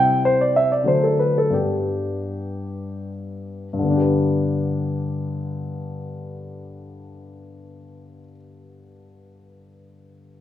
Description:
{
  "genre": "classical, baroque-style suite movement for grand piano",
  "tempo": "78-102 BPM",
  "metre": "3/4",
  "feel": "rubato",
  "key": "G major",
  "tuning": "A4 = 438 Hz",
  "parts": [
    { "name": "warm concert grand piano", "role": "solo", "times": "0.0-10.4 s", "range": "G2 to G5", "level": "-20 LUFS", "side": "left 1 dB", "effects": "none" }
  ],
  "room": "wet recital hall reverb, RT60 1.4 s",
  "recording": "none",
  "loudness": "-19 LUFS",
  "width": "side -11 dB against mid",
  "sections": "0.0-3.7 A section; 3.7-8.3 B section",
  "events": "slowing down 0.0-3.7",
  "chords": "0.0 C; 0.9 D; 1.6 G"
}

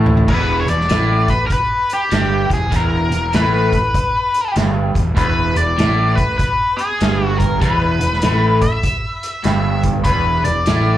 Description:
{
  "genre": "blues rock power trio and southern rock",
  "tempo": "98 BPM",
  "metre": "4/4",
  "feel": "swing 64% on 8ths",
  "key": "unclear",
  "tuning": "A4 = 440 Hz",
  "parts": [
    { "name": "crunchy overdriven guitar", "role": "riff", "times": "0.0-11.0 s", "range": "E2 to A2", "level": "-20 LUFS", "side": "right 1 dB", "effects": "phaser, slapback echo" },
    { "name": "fuzz fingered electric bass", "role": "bass", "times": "0.0-11.0 s", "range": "E1 to A1", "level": "-18 LUFS", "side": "equal", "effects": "overdrive" },
    { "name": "vintage drum kit", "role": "drums", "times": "0.1-10.9 s", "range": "crash cymbal, hi-hat, kick drum, snare drum, toms", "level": "-20 LUFS", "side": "equal", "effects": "none" },
    { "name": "octave-fuzz lead guitar", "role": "melody", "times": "0.3-11.0 s", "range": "G4 to E5", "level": "-18 LUFS", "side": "left 2 dB", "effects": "wah, distortion, slapback echo" }
  ],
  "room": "light reverb",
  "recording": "live gig heard through the venue's PA, club reverb",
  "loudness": "-14 LUFS",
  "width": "side -13 dB against mid",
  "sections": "0.3-11.0 A section",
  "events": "drum fill 0.0",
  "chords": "0.3 E5"
}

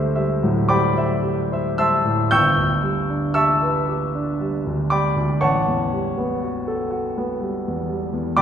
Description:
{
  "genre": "classical, impressionist solo piano",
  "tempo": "36-41 BPM (dotted quarters)",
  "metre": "6/8",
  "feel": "rubato",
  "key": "G lydian",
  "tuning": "A4 = 440 Hz",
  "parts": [
    { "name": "warm baby grand piano", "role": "solo", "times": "0.0-8.4 s", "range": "G1 to G6", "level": "-18 LUFS", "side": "equal", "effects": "none" }
  ],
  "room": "wet scoring stage reverb, RT60 2.0 s",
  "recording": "heard from further back in the room",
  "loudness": "-18 LUFS",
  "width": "side -8 dB against mid",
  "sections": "0.0-2.3 A section; 2.3-8.4 B section",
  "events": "none",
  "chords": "0.0 D9sus4; 2.3 G6; 5.4 A13"
}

